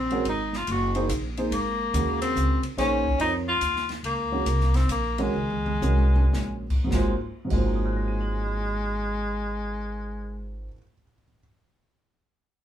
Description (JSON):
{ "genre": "modal jazz", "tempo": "100-143 BPM", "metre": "3/4", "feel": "swing 65% on 8ths", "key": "Ab mixolydian", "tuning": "A4 = 440 Hz", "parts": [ { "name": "clear tenor saxophone", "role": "melody", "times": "0.0-10.7 s", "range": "Ab3 to Gb4", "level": "-28 LUFS", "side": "left 2 dB", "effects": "none" }, { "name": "upright bass", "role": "bass", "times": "0.0-10.7 s", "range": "Gb1 to F2", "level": "-26 LUFS", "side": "equal", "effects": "none" }, { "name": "warm grand piano", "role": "accompaniment", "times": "0.1-11.4 s", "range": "Ab2 to Gb7", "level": "-30 LUFS", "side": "right 2 dB", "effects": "none" }, { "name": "open jazz drum kit", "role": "drums", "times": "0.1-7.7 s", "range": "crash cymbal, hi-hat, kick drum, ride cymbal, snare drum, toms", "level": "-33 LUFS", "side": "equal", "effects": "none" } ], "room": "wet small room reverb, RT60 0.5 s", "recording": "band playing live in one room", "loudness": "-23 LUFS", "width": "side -10 dB against mid", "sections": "0.0-6.9 A section; 6.9-10.5 B section", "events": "slowing down 4.0-6.9; drum fill 5.3-6.3", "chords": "0.0 Ab9; 1.5 Bbm7/Ab; 6.9 Ab13" }